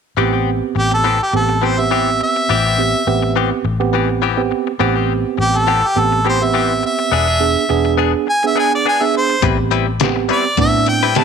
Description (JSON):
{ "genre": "straight-eighth soul blues", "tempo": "104 BPM", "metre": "4/4", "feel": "swing 55% on 16ths", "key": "A minor", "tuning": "A4 = 440 Hz", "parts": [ { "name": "tine electric piano", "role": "accompaniment", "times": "0.2-11.2 s", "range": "B3 to G#4", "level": "-19 LUFS", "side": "right 13 dB", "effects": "medium stereo tremolo" }, { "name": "direct-recorded clean electric guitar", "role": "stabs", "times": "0.2-11.2 s", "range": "E3 to B4", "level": "-21 LUFS", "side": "left 13 dB", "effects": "none" }, { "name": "vintage muted fingered electric bass", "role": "bass", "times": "0.2-11.2 s", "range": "E1 to A2", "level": "-20 LUFS", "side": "left 2 dB", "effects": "none" }, { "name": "bright harmonica", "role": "melody", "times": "0.8-11.2 s", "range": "G4 to A5", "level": "-16 LUFS", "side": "right 1 dB", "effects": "none" }, { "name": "trip hop sampler-style drum kit", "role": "drums", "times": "9.4-11.2 s", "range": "hi-hat, kick drum, snare drum", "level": "-19 LUFS", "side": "left 8 dB", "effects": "none" } ], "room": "light reverb", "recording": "1960s-style stereo with parts hard left and right", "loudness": "-13 LUFS", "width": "side -6 dB against mid", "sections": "0.2-9.4 A section; 9.4-11.2 B section", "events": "none", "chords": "0.2 Am9; 7.1 E7; 9.4 Am9" }